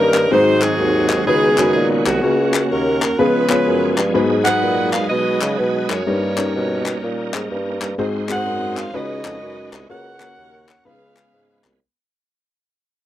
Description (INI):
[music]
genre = uptempo gospel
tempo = 125 BPM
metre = 4/4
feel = swing 65% on 8ths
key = unclear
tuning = A4 = 441 Hz
[part]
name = clear saxophone section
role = melody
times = 0.0-11.8 s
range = A#3 to F#5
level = -20 LUFS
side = equal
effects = none
[part]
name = warm upright piano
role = accompaniment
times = 0.0-11.7 s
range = G2 to C#5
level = -21 LUFS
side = left 3 dB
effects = none
[part]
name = bright tonewheel organ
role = sustained chords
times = 0.0-11.8 s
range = D#3 to B#4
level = -25 LUFS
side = right 3 dB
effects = slow rotary speaker, overdrive, chorus vibrato
[part]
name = dark bassoon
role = bass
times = 0.0-11.8 s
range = B#1 to C#3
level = -21 LUFS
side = equal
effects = none
[part]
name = group handclap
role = percussion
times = 0.1-11.7 s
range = none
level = -24 LUFS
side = left 6 dB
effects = none
[sound]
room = light reverb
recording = dry, close 1970s-style studio recording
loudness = -15 LUFS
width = side -12 dB against mid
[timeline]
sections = 0.0-4.2 A section; 4.2-11.8 B section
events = fade-out 4.2-11.8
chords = 0.3 G#7; 1.3 C#9sus4; 2.2 F#/C#; 3.2 C#7; 4.2 G#m7; 6.1 D#7/G; 8.0 G#7; 8.9 C#9sus4; 9.9 F#/C#; 10.9 C#7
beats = | 0.31 0.79 1.27 1.75 | 2.23 2.71 3.19 3.67 | 4.15 4.63 5.11 5.59 | 6.07 6.55 7.03 7.51 | 7.99 8.47 8.95 9.43 | 9.90 10.38 10.86 11.34